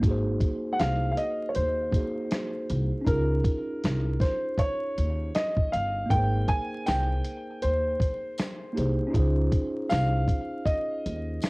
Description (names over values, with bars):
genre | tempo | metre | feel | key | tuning
lo-fi hip hop | 79 BPM | 4/4 | swing 61% on 16ths | Ab major | A4 = 440 Hz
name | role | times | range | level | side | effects
mellow tine electric piano | accompaniment | 0.0-11.5 s | Bb3 to C5 | -33 LUFS | right 1 dB | medium stereo tremolo, low-pass filter, cassette tape
upright bass | bass | 0.0-11.4 s | G1 to Eb2 | -27 LUFS | equal | none
dusty soul sampler-style drum kit | drums | 0.0-11.5 s | hi-hat, kick drum, snare drum | -27 LUFS | equal | none
dark upright piano | melody | 0.7-11.5 s | Bb4 to Ab5 | -29 LUFS | equal | low-pass filter
tambourine | percussion | 6.9-11.5 s | none | -46 LUFS | left 3 dB | none
room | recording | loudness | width
light reverb | home recording on cassette, vinyl crackle | -24 LUFS | side -26 dB against mid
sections
0.0-11.5 A section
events
none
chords
0.0 Ab7; 3.1 Db; 6.1 Abmaj9; 9.1 Dbmaj7